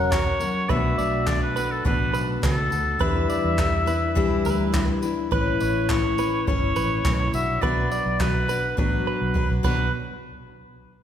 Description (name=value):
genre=acoustic pop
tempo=104 BPM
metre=4/4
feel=straight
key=B minor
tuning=A4 = 440 Hz
part: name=clear oboe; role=melody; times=0.0-9.9 s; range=A4 to F#5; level=-27 LUFS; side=equal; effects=none
part: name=picked steel-string acoustic guitar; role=accompaniment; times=0.0-9.9 s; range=F#2 to B4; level=-26 LUFS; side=left 4 dB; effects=none
part: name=direct-recorded clean electric guitar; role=arpeggios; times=0.0-9.9 s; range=A#4 to D5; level=-31 LUFS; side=right 6 dB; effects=none
part: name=vintage muted fingered electric bass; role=bass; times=0.0-9.9 s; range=E1 to E2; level=-28 LUFS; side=right 1 dB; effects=none
part: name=jazz brush drum kit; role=drums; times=0.1-9.8 s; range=crash cymbal, handclaps, kick drum, tambourine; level=-27 LUFS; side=right 1 dB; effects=none
room=moderate concert hall reverb, RT60 2.3 s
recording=recorded in a church or concert hall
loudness=-20 LUFS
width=side -9 dB against mid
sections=0.0-9.9 A section; 9.9-11.0 B section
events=drum fill 8.8-9.9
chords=0.0 F#; 0.7 Bm7; 3.0 Em7; 5.3 Aadd9; 7.3 Bm; 9.9 N.C.